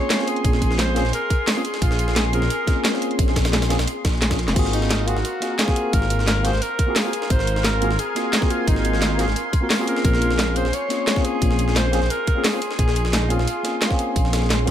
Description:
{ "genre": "liquid drum and bass", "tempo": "175 BPM", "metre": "4/4", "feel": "straight", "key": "unclear", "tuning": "A4 = 441 Hz", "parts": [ { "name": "warm alto saxophone", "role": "melody", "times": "0.0-14.0 s", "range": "Eb4 to Db5", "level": "-27 LUFS", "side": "equal", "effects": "ping-pong delay" }, { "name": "bright tine electric piano", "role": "accompaniment", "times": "0.0-14.7 s", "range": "Bb3 to C5", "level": "-26 LUFS", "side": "equal", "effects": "phaser" }, { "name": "lush unison pad", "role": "sustained chords", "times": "0.0-14.7 s", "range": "Ab4 to C6", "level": "-29 LUFS", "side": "equal", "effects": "chorus, sidechain pumping" }, { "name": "breakbeat sampler-style drum kit", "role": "drums", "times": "0.1-14.7 s", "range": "hi-hat, snare drum", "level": "-29 LUFS", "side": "equal", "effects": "high-pass filter on hats, high-pass filter on snare, high-pass filter on room" }, { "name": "garage drum kit", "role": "drums", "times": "0.1-14.7 s", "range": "crash cymbal, hi-hat, snare drum", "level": "-24 LUFS", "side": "equal", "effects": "none" }, { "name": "dark detuned saw bass", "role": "bass", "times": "0.4-14.7 s", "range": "F1 to Bb1", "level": "-22 LUFS", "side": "equal", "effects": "tube saturation" }, { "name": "electronic kick drum", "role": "drums", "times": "0.4-14.7 s", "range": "none", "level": "-20 LUFS", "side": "equal", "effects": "none" } ], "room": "light reverb, digital ambience", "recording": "none", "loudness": "-18 LUFS", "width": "side -10 dB against mid", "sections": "0.0-4.6 A section; 4.6-14.7 A section", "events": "drop 0.0-4.6, 4.6-14.7; drum fill 4.2-4.6", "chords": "0.0 Bbm9; 4.6 Ab13; 10.0 Bbm9", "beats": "0.10 | 0.45 0.79 1.13 1.48 | 1.82 2.16 2.50 2.85 | 3.19 3.53 3.88 4.22 | 4.56 4.91 5.25 5.59 | 5.93 6.28 6.62 6.96 | 7.30 7.65 7.99 8.33 | 8.68 9.02 9.36 9.71 | 10.05 10.39 10.73 11.08 | 11.42 11.76 12.11 12.45 | 12.79 13.13 13.48 13.82 | 14.16 14.51" }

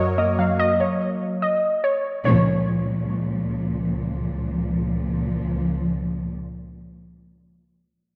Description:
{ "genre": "hip hop", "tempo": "145 BPM", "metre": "4/4", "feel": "half-time", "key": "Bb minor", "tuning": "A4 = 438 Hz", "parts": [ { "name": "warbly dusty pluck", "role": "melody", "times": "0.0-3.5 s", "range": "Db5 to F5", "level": "-25 LUFS", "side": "equal", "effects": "chorus, low-pass filter, tape echo" }, { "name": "glassy digital keys", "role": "accompaniment", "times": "0.0-1.4 s", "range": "Gb2 to Bb3", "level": "-26 LUFS", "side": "equal", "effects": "chorus, low-pass filter" }, { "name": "sweeping resonant pad", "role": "sustained chords", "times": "0.0-0.6 s", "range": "Gb3 to Db5", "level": "-33 LUFS", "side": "equal", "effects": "chorus" }, { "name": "dark symphonic string section", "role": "stabs", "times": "2.3-6.3 s", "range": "Db2 to F3", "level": "-25 LUFS", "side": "equal", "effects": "none" } ], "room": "wet lush hall reverb, RT60 2.2 s", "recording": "dreamy mix soaked in reverb", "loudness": "-23 LUFS", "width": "mono", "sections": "0.0-2.3 A section; 2.3-5.6 B section", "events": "none", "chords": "0.0 Gb; 2.3 Bbm", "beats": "0.18 | 0.60 1.01 1.42 1.84 | 2.25 2.67 3.08 3.49 | 3.91 4.32 4.73 5.15" }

